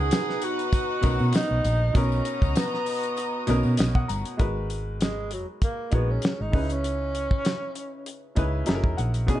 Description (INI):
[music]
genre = lush 1970s-style soul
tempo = 98 BPM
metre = 4/4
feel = swing 54% on 16ths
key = B major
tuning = A4 = 439 Hz
[part]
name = breathy tenor saxophone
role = melody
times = 0.0-8.2 s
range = F#3 to G#4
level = -29 LUFS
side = equal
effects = plate reverb
[part]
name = dark studio string section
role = second line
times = 0.0-4.4 s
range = D#4 to A#5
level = -33 LUFS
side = right 1 dB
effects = none
[part]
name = clear baby grand piano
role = accompaniment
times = 0.0-9.4 s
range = B2 to A#5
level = -31 LUFS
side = equal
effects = none
[part]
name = hollow-body short-scale fingered electric bass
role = bass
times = 0.0-9.4 s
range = E1 to B2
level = -26 LUFS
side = equal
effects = none
[part]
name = damped 70s drum kit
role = drums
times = 0.1-9.4 s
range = hi-hat, kick drum, snare drum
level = -25 LUFS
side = equal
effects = none
[part]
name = tambourine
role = percussion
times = 0.1-4.4 s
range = none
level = -45 LUFS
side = left 8 dB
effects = none
[sound]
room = light reverb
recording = dark, warm production, nothing above 10.6 kHz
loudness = -23 LUFS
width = side -13 dB against mid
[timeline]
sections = 0.0-4.4 A section; 4.4-9.4 B section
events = grand piano fill 3.5-4.4, 8.4-9.3; tenor saxophone solo 4.4-9.4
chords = 0.0 Bmaj7; 2.0 Bmaj9; 4.4 G#m9; 6.5 C#m7; 8.7 F#13